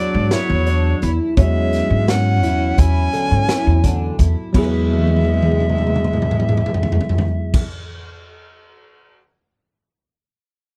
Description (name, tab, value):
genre	progressive instrumental, band music in an uneven meter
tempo	170 BPM (eighths)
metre	9/8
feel	straight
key	E mixolydian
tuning	A4 = 439 Hz
part	bright reedy silver concert flute	melody	0.0-7.6 s	C#5 to G#5	-26 LUFS	equal	none
part	clear alto saxophone	second line	0.0-7.6 s	F#3 to C#4	-28 LUFS	equal	none
part	bell-like tine electric piano	accompaniment	0.0-7.7 s	F#3 to G#4	-27 LUFS	equal	none
part	fingerpicked twelve-string acoustic guitar	arpeggios	0.0-7.7 s	D3 to E5	-28 LUFS	equal	analog chorus
part	upright bass	bass	0.1-7.6 s	E2 to G#2	-20 LUFS	equal	none
part	raw garage drum kit	drums	0.3-9.2 s	crash cymbal, hi-hat, kick drum, snare drum, toms	-22 LUFS	equal	none
room	small room ambience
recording	none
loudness	-17 LUFS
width	mono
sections	0.0-4.5 A section; 4.5-7.7 B section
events	drum fill 4.9-7.5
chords	0.0 F#sus2/E; 4.5 E